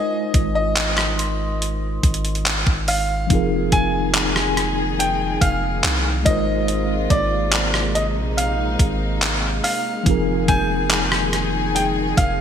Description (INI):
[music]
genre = contemporary R&B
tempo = 71 BPM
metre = 4/4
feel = straight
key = unclear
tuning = A4 = 441 Hz
[part]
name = clear grand piano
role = melody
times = 0.0-12.4 s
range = D5 to Ab5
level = -24 LUFS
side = equal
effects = digital delay
[part]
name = mellow tine electric piano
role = accompaniment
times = 0.0-12.4 s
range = F3 to C5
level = -25 LUFS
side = equal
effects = medium stereo tremolo
[part]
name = synth chime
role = texture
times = 0.0-12.4 s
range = C6 to G6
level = -34 LUFS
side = left 1 dB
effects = ensemble chorus, digital delay
[part]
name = long sustained 808-style bass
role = bass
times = 0.3-12.4 s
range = F1 to C2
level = -24 LUFS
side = equal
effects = none
[part]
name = gated 80s digital drum machine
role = drums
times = 0.3-12.4 s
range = handclaps, hi-hat, kick drum, rim click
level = -20 LUFS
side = equal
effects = gated reverb
[part]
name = dark studio string section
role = sustained chords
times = 3.3-12.4 s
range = C3 to Ab4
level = -26 LUFS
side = left 3 dB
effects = none
[sound]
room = moderate lush hall reverb, RT60 2.7 s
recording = bright 1980s-style digital production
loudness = -17 LUFS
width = side -8 dB against mid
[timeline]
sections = 0.0-12.4 A section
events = none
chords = 0.0 Ab69; 3.3 Fm7; 6.3 Ab69; 10.1 Fm11